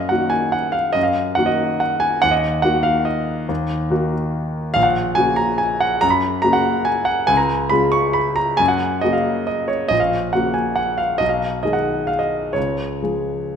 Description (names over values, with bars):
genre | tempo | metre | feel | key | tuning
classical, piano waltz | 122-151 BPM | 3/4 | rubato | Eb minor, F# major from 4.8 s | A4 = 440 Hz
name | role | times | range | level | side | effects
warm concert grand piano | solo | 0.0-13.6 s | A#1 to C#6 | -16 LUFS | equal | none
room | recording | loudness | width
wet recital hall reverb, RT60 1.6 s | none | -16 LUFS | side -7 dB against mid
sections
0.0-13.6 A section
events
none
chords
0.0 Ebm/Gb; 2.2 Ebm; 4.8 F#/A#; 6.0 F#; 7.3 C#; 8.6 F#; 9.9 F#/A#; 11.2 G#m/B; 12.6 C#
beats
0.12 0.55 | 0.96 1.38 1.82 | 2.23 2.64 3.07 | 3.50 3.92 4.35 | 4.76 5.18 5.62 | 6.04 6.45 6.88 | 7.31 7.73 8.17 | 8.60 9.03 9.48 | 9.92 10.34 10.78 | 11.21 11.63 12.09 | 12.56 13.04 13.53